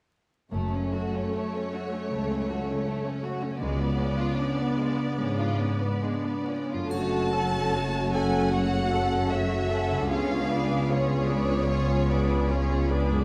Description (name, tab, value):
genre	classical, slow romantic movement for symphony orchestra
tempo	64-81 BPM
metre	4/4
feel	rubato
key	F# minor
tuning	A4 = 437 Hz
part	rich studio violin section	melody	0.5-12.9 s	C#5 to A5	-36 LUFS	equal	none
part	rich studio violin section	second line	0.5-13.2 s	G#3 to F#5	-36 LUFS	equal	none
part	rich studio viola section	accompaniment	0.5-13.2 s	A3 to A4	-35 LUFS	equal	none
part	concert harp	arpeggios	0.5-13.2 s	F#2 to F#4	-35 LUFS	equal	none
part	warm studio cello section	bass	0.5-13.2 s	C#2 to G#2	-33 LUFS	equal	none
part	warm studio double bass section	bass	0.5-13.2 s	F#1 to C#2	-32 LUFS	equal	none
part	mellow French horn section	sustained chords	6.9-13.2 s	B3 to F#4	-34 LUFS	equal	none
part	triangle	percussion	6.9-8.5 s	none	-53 LUFS	equal	none
room	wet scoring stage reverb, RT60 1.9 s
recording	vinyl crackle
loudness	-27 LUFS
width	mono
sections	0.5-6.9 A section; 6.9-13.2 B section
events	none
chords	0.5 F#m; 3.6 C#7b9; 6.9 F#m; 10.1 C#7b9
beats	| 0.52 1.34 2.12 2.87 | 3.62 4.38 5.18 6.02 | 6.91 7.72 8.53 9.30 | 10.09 10.89 11.68 12.49